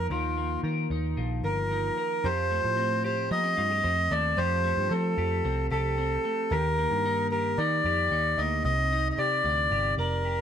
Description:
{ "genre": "jangly indie pop", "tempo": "112 BPM", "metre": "4/4", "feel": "straight", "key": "F mixolydian", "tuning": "A4 = 444 Hz", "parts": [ { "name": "melodica", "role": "melody", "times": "0.0-10.4 s", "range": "F4 to Eb5", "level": "-26 LUFS", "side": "equal", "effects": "plate reverb" }, { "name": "twelve-string electric guitar", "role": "arpeggios", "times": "0.0-10.4 s", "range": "C3 to D5", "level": "-33 LUFS", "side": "left 2 dB", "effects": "analog chorus" }, { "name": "vintage muted picked electric bass", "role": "bass", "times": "0.0-10.4 s", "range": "F1 to F3", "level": "-30 LUFS", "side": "equal", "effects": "none" } ], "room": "moderate studio reverb, RT60 0.6 s", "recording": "none", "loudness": "-24 LUFS", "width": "side -8 dB against mid", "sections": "0.0-2.2 A section; 2.2-10.4 B section", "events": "none", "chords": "0.0 Ebsus2; 2.2 Fadd9; 6.5 Eb; 8.7 Cmadd9" }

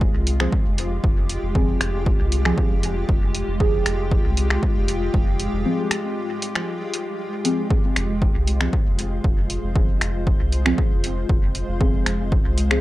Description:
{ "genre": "dub techno", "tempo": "117 BPM", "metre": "4/4", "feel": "straight", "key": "F minor", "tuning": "A4 = 440 Hz", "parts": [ { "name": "granular cloud pad", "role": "sustained chords", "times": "0.0-12.8 s", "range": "Ab3 to C5", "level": "-28 LUFS", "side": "left 1 dB", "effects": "built-in reverb, sidechain pumping" }, { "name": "round analog bass", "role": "bass", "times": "0.0-12.8 s", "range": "F1 to C2", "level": "-24 LUFS", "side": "equal", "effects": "transformer saturation, sidechain pumping" }, { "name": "electronic kick drum", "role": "drums", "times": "0.0-12.4 s", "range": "none", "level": "-20 LUFS", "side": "equal", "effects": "none" }, { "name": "punchy analog drum machine", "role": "drums", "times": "0.3-12.8 s", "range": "finger snaps, hi-hat", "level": "-26 LUFS", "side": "equal", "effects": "dub echo" }, { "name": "deep mellow chord stab", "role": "stabs", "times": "0.4-12.8 s", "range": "F3 to Ab4", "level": "-27 LUFS", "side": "right 1 dB", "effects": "chorus, phaser, sidechain pumping, dub echo" } ], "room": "digital ambience", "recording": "dry, gritty hardware recording, cassette tape", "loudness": "-19 LUFS", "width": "side -16 dB against mid", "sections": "0.0-12.8 A section", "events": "break 5.7-7.7", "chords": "0.0 Fm" }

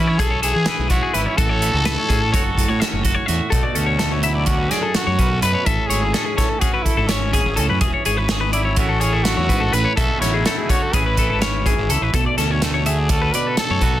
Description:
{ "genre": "math rock and midwest emo", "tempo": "251 BPM (eighths)", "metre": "9/8", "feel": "straight", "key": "A major", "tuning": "A4 = 440 Hz", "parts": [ { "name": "growling trumpet", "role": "melody", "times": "0.0-14.0 s", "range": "C#4 to B4", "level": "-24 LUFS", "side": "equal", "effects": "none" }, { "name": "twangy electric guitar", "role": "accompaniment", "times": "0.0-14.0 s", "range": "F#2 to C#5", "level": "-26 LUFS", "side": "right 6 dB", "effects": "none" }, { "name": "twelve-string electric guitar", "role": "arpeggios", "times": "0.0-14.0 s", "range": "G#4 to E5", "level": "-23 LUFS", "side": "left 6 dB", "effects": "none" }, { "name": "fuzz fingered electric bass", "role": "bass", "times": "0.0-14.0 s", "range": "E1 to E3", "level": "-22 LUFS", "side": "equal", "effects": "overdrive" }, { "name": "modern studio drum kit", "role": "drums", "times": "0.2-13.9 s", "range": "hi-hat, kick drum, snare drum", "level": "-21 LUFS", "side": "equal", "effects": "none" } ], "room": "light reverb", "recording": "dense, heavily limited modern master", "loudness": "-16 LUFS", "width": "side -13 dB against mid", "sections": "0.0-3.5 A section; 3.5-14.0 B section", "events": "none", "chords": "0.0 C#m7; 1.4 A6; 3.5 Bm9; 5.7 Amaj7; 7.8 E6; 8.8 Amaj9; 10.0 Bm9; 10.9 Amaj9; 12.1 Bm9" }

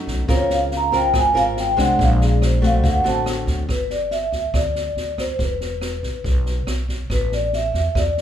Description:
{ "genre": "bossa nova", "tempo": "141 BPM", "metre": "4/4", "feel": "straight", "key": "G major from 3.7 s", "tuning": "A4 = 441 Hz", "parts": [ { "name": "nylon-string guitar", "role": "accompaniment", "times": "0.0-3.7 s", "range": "Ab2 to Bb4", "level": "-23 LUFS", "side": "left 1 dB", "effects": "none" }, { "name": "upright bass", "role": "bass", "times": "0.0-8.2 s", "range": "E1 to E2", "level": "-22 LUFS", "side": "equal", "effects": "none" }, { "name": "open jazz drum kit", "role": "drums", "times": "0.1-8.2 s", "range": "kick drum, rim click, snare drum", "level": "-25 LUFS", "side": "equal", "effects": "none" }, { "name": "vibraphone with medium mallets", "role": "melody", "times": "0.3-8.2 s", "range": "Ab4 to Bb5", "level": "-21 LUFS", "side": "equal", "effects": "none" } ], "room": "moderate large studio reverb, RT60 0.8 s", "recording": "band playing live in one room", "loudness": "-17 LUFS", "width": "side -9 dB against mid", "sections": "0.0-3.7 A section; 3.7-8.2 B section", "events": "vibraphone solo 0.0-3.7", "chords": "0.3 Db6; 2.0 Bb9; 2.8 D7; 3.7 G5; 5.4 E5; 7.1 A5" }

